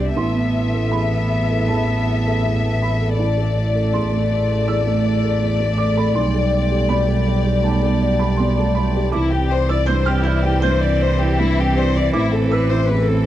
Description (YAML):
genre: neoclassical piano and strings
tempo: 80 BPM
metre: 4/4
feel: rubato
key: C major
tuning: A4 = 440 Hz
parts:
  - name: warm chamber violin section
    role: melody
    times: 0.0-13.3 s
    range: E4 to E5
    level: -22 LUFS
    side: left 7 dB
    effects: none
  - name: warm cello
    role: second line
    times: 0.0-13.3 s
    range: E3 to C4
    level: -25 LUFS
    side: right 4 dB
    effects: none
  - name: felt-muted upright piano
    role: accompaniment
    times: 0.0-13.3 s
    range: A1 to G6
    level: -22 LUFS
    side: right 5 dB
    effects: none
  - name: warm chamber string section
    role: sustained chords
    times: 0.0-13.3 s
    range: A3 to G5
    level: -30 LUFS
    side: left 2 dB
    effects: none
  - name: dark double bass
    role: bass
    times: 0.0-13.3 s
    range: A1 to C2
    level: -20 LUFS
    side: equal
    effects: none
room: light reverb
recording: dry, close 1970s-style studio recording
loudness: -16 LUFS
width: side -13 dB against mid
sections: 0.0-13.3 A section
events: none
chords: 0.2 Amadd9; 3.2 Dsus2/A; 6.2 Gadd9/B; 9.1 Cadd9; 12.1 Amadd9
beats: | 0.17 0.92 1.68 2.45 | 3.20 3.94 4.68 5.42 | 6.16 6.90 7.64 8.38 | 9.14 9.88 10.63 11.39 | 12.15 12.89